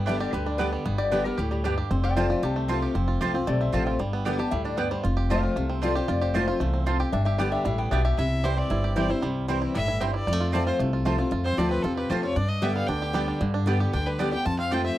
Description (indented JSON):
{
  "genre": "bluegrass",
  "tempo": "229 BPM",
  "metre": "4/4",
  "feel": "straight",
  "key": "G mixolydian",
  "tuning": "A4 = 443 Hz",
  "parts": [
    { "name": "lap resonator guitar", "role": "second line", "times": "0.0-8.2 s", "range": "G4 to A5", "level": "-31 LUFS", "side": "left 5 dB", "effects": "none" },
    { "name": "picked steel-string acoustic guitar", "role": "accompaniment", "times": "0.0-15.0 s", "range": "E2 to G4", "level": "-28 LUFS", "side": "left 2 dB", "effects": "none" },
    { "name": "bluegrass banjo", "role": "arpeggios", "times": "0.0-15.0 s", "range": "D3 to G4", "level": "-32 LUFS", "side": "right 6 dB", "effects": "none" },
    { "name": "upright bass", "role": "bass", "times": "0.0-14.9 s", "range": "F1 to G2", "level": "-27 LUFS", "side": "equal", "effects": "none" },
    { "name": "mandolin", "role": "stabs", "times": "0.1-14.8 s", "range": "B3 to A5", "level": "-31 LUFS", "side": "right 6 dB", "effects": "none" },
    { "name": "clear fiddle", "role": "melody", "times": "8.2-15.0 s", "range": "A4 to A5", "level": "-31 LUFS", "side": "left 1 dB", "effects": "none" }
  ],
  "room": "little or no reverb",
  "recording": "dry, close 1970s-style studio recording",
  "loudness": "-23 LUFS",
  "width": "side -14 dB against mid",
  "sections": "0.0-8.2 A section; 8.2-15.0 A section",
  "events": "resonator guitar played with a steel bar solo 0.0-8.2; fiddle solo 8.2-15.0",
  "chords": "0.0 G; 1.9 F; 4.0 G; 5.0 F; 7.1 G; 8.2 C; 10.3 F; 12.4 G; 14.5 F",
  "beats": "0.07 0.34 0.60 | 0.86 1.12 1.38 1.64 | 1.91 2.17 2.43 2.69 | 2.95 3.21 3.48 3.74 | 4.00 4.26 4.52 4.78 | 5.04 5.30 5.57 5.83 | 6.09 6.35 6.61 6.87 | 7.13 7.40 7.66 7.92 | 8.18 8.44 8.70 8.97 | 9.23 9.49 9.75 10.01 | 10.27 10.54 10.80 11.06 | 11.32 11.58 11.84 12.10 | 12.37 12.63 12.89 13.15 | 13.41 13.67 13.94 14.20 | 14.46 14.72"
}